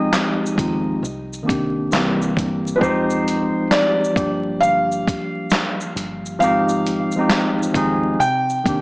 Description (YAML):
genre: lo-fi hip hop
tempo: 67 BPM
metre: 4/4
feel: swing 64% on 16ths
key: F dorian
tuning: A4 = 436 Hz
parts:
  - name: felt-muted upright piano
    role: melody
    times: 0.0-8.8 s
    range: B4 to G5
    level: -21 LUFS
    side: equal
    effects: none
  - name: tine electric piano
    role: accompaniment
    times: 0.0-8.8 s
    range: Eb3 to Ab4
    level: -20 LUFS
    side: equal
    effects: fast stereo tremolo, cassette tape
  - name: dusty soul sampler-style drum kit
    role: drums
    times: 0.1-8.8 s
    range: handclaps, hi-hat, kick drum, shaker, snare drum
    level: -21 LUFS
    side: equal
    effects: vintage 12-bit sampler grit
  - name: deep dub fingered electric bass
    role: bass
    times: 0.6-8.8 s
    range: F1 to C3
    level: -31 LUFS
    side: equal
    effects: none
room: moderate spring reverb, RT60 2.6 s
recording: vinyl crackle, small speaker sound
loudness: -17 LUFS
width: side -26 dB against mid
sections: 0.0-8.8 A section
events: none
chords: 0.0 Fm9; 1.0 Cm9; 1.9 C7; 2.8 Fm9; 4.2 Gm7; 6.4 Fm9/Ab; 8.2 Cm9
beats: 0.13 1.03 1.92 | 2.82 3.71 4.61 5.50 | 6.40 7.29 8.19